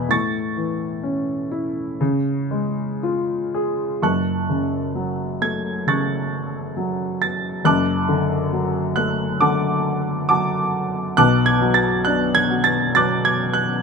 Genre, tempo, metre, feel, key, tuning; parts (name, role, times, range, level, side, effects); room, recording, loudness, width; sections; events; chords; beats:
classical, lyrical solo piano; 56-69 BPM; 4/4; rubato; F# minor from 4.0 s; A4 = 440 Hz
warm baby grand piano; solo; 0.0-13.8 s; F#1 to A6; -18 LUFS; equal
moderate studio reverb, RT60 0.6 s; minimal, uncompressed stereo recording; -18 LUFS; side -5 dB against mid
0.0-4.0 A section; 4.0-13.8 B section
0.1 A; 2.0 C#; 4.0 F#m; 7.7 D/F#; 11.2 Bm7
| 0.09 1.04 2.00 3.02 | 4.02 4.96 5.88 6.77 | 7.65 8.53 9.41 10.29 | 11.18 12.06 12.96